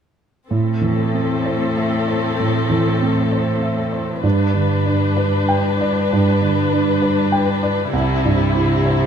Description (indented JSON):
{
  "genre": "cinematic",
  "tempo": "65 BPM",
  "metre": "4/4",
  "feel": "rubato",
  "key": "unclear",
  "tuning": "A4 = 445 Hz",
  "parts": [
    { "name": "rich studio viola section", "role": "accompaniment", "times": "0.5-9.1 s", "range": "C4 to B4", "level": "-22 LUFS", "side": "left 3 dB", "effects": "none" },
    { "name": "warm baby grand piano", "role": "accompaniment", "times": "0.5-9.1 s", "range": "C2 to G5", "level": "-18 LUFS", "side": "right 2 dB", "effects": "none" },
    { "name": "bright studio cello section", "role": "bass", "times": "0.5-9.1 s", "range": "G2 to C3", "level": "-22 LUFS", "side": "left 1 dB", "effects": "none" }
  ],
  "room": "light reverb",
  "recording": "close, detailed microphones",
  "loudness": "-16 LUFS",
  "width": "side -8 dB against mid",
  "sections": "0.5-9.1 A section",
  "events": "none",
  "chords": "0.5 Am; 4.2 G; 7.9 C"
}